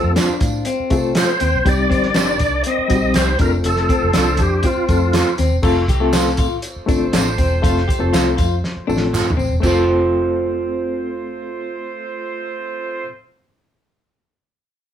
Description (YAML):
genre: uptempo 1960s-style soul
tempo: 120 BPM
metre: 4/4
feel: straight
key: F mixolydian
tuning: A4 = 440 Hz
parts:
  - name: bright tonewheel organ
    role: melody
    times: 0.0-5.4 s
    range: F4 to Eb5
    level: -20 LUFS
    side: right 1 dB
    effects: chorus vibrato, fast rotary speaker
  - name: dark horn section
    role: second line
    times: 0.0-13.1 s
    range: Eb3 to F5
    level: -29 LUFS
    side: right 2 dB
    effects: none
  - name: bright reed electric piano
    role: accompaniment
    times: 0.0-13.1 s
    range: G3 to A4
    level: -22 LUFS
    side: left 3 dB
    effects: overdrive, fast tremolo
  - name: clean electric guitar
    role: riff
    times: 0.0-11.1 s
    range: C4 to G4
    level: -24 LUFS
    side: left 5 dB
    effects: none
  - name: vintage muted fingered electric bass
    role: bass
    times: 0.0-13.0 s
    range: E1 to C3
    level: -22 LUFS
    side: equal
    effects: none
  - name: electric guitar through a small old amp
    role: stabs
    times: 0.2-13.2 s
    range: C4 to C5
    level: -22 LUFS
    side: right 5 dB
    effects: none
  - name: warm soul drum kit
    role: drums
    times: 0.2-9.7 s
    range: china cymbal, crash cymbal, hi-hat, kick drum, snare drum, toms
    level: -20 LUFS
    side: equal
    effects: none
  - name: handclaps and tambourine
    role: percussion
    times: 0.2-9.9 s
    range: none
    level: -29 LUFS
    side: right 2 dB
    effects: none
room: moderate studio reverb, RT60 0.6 s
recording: band playing live in one room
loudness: -15 LUFS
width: side -9 dB against mid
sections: 0.0-5.6 A section; 5.6-9.6 B section; 9.6-13.6 C section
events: drum fill 8.6-9.6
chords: 0.0 F; 1.7 Cm; 3.4 F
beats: 0.17 0.67 1.16 | 1.66 2.16 2.65 3.15 | 3.65 4.15 4.65 5.14 | 5.64 6.14 6.64 7.14 | 7.63 8.13 8.63 9.13 | 9.63 10.13 10.63 11.13 | 11.63 12.13 12.63 13.13